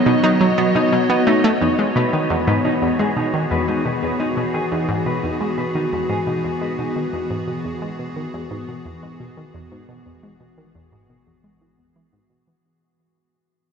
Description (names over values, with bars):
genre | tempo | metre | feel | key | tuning
ambient, sequencer-driven space music | 87 BPM | 4/4 | straight | E major | A4 = 440 Hz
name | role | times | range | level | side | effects
evolving wavetable pad | sustained chords | 0.0-12.7 s | E3 to D#5 | -21 LUFS | left 1 dB | chorus, built-in reverb, shimmer reverb
mellow electric guitar | arpeggios | 0.1-6.9 s | F#3 to B4 | -24 LUFS | right 1 dB | auto-pan, ping-pong delay, shimmer reverb
analog pluck | riff | 0.1-12.6 s | E2 to D#4 | -22 LUFS | equal | chorus, ping-pong delay, shimmer reverb
room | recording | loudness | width
wet huge ambient reverb, RT60 7.8 s | in a vast, echoing space, nothing above 8.0 kHz | -17 LUFS | side -6 dB against mid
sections
0.0-1.6 A section; 1.6-12.6 B section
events
fade-out 1.6-12.6; filter sweep on synth arpeggio sound 1.6-12.6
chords
0.0 B7; 1.6 Emaj7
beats
0.23 0.92 | 1.61 2.30 2.99 3.68 | 4.37 5.06 5.75 6.44 | 7.13 7.82 8.51 9.20 | 9.89 10.58 11.27 11.96